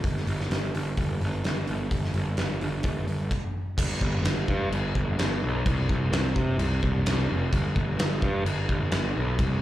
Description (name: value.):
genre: classic rock.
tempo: 128 BPM.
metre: 4/4.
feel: straight.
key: unclear.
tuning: A4 = 439 Hz.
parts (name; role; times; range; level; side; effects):
fuzz picked electric bass; bass; 0.0-9.6 s; F1 to C3; -26 LUFS; equal; overdrive.
huge arena drum kit; drums; 0.0-9.5 s; crash cymbal, hi-hat, kick drum, snare drum; -28 LUFS; equal; none.
room: little or no reverb.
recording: live gig heard through the venue's PA, club reverb.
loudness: -24 LUFS.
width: side -14 dB against mid.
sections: 0.0-3.8 A section; 3.8-9.6 B section.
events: stop 3.3-3.8.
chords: none.